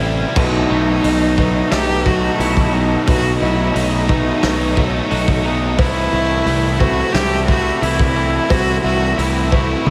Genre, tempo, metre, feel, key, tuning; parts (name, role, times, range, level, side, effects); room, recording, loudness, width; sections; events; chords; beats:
post-rock; 88 BPM; 4/4; straight; A4 = 440 Hz
twangy electric guitar; arpeggios; 0.0-9.9 s; B2 to F#4; -29 LUFS; equal; lush chorus, analog delay
cranked stack guitar; riff; 0.0-9.9 s; B2 to E4; -28 LUFS; equal; overdrive, phaser
overdriven electric guitar; riff; 0.0-9.9 s; B2 to E4; -24 LUFS; equal
fuzz picked electric bass; bass; 0.0-9.9 s; A1 to C2; -22 LUFS; equal; overdrive
warm cello; melody; 0.4-9.9 s; D#4 to G4; -22 LUFS; equal; analog delay
felt-muted upright piano; arpeggios; 0.4-9.9 s; B4 to E5; -31 LUFS; equal
loose indie drum kit; drums; 0.4-9.9 s; crash cymbal, hi-hat, kick drum, snare drum, toms; -23 LUFS; equal
wet huge ambient reverb, RT60 8.2 s; dreamy mix soaked in reverb; -16 LUFS; mono
0.0-9.9 A section
0.4 B7; 5.8 Am/C
| 0.36 1.04 1.72 2.40 | 3.07 3.75 4.43 5.11 | 5.79 6.46 7.14 7.82 | 8.50 9.18 9.86